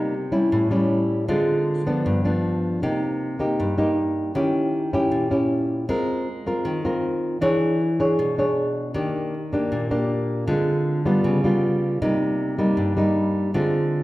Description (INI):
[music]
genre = bossa nova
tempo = 157 BPM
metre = 4/4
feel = straight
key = C minor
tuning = A4 = 440 Hz
[part]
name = nylon-string guitar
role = solo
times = 0.0-14.0 s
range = G2 to C#5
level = -20 LUFS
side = equal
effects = none
[sound]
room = wet recital hall reverb, RT60 1.7 s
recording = recorded in a church or concert hall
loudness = -20 LUFS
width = side -17 dB against mid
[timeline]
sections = 0.0-2.8 A section; 2.8-14.0 B section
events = none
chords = 0.0 Cm7; 0.5 A7; 1.3 Dm7b5; 2.1 G7; 2.8 Cm7; 4.4 Eb7b9; 5.9 Ab69; 7.4 E6; 9.0 Ebmaj7; 10.5 Dm7b5; 11.3 Db7#11; 12.0 Cm7